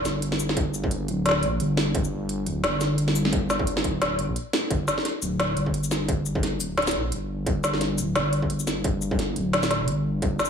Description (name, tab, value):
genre	half-time drum and bass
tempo	174 BPM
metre	4/4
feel	swing 56% on 16ths, half-time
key	G minor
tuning	A4 = 439 Hz
part	dark detuned saw bass	bass	0.0-10.4 s	D1 to Bb1	-26 LUFS	equal	none
part	organic electronic drum kit	drums	0.1-10.5 s	hi-hat, shaker, snare drum	-25 LUFS	equal	overdrive
part	electronic kick drum	drums	0.6-10.3 s	none	-28 LUFS	equal	distortion
room	light reverb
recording	none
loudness	-22 LUFS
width	side -7 dB against mid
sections	0.0-4.7 A section; 4.7-10.5 A section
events	drop 0.0-4.7, 4.7-10.5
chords	none